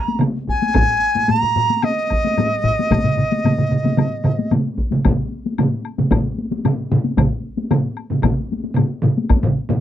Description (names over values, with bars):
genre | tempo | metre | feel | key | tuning
japanese traditional, taiko drum ensemble | 112 BPM | 4/4 | straight | unclear | A4 = 443 Hz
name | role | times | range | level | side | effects
mellow dizi | melody | 0.0-4.5 s | Eb5 to Bb5 | -19 LUFS | right 2 dB | none
taiko ensemble | percussion | 0.1-9.8 s | none | -22 LUFS | left 4 dB | none
taiko ensemble | percussion | 0.2-9.8 s | none | -20 LUFS | right 3 dB | none
woodblock | percussion | 0.2-9.4 s | none | -30 LUFS | left 9 dB | none
taiko ensemble | percussion | 0.5-9.4 s | none | -20 LUFS | equal | none
taiko ensemble | percussion | 0.8-9.8 s | none | -22 LUFS | left 3 dB | none
room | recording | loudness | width
little or no reverb | dry, close 1970s-style studio recording | -16 LUFS | side -11 dB against mid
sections
0.0-5.0 A section; 5.0-9.8 B section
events
none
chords
none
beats
0.21 | 0.75 1.29 1.83 2.36 | 2.90 3.44 3.97 4.51 | 5.04 5.58 6.11 6.64 | 7.18 7.71 8.24 8.77 | 9.30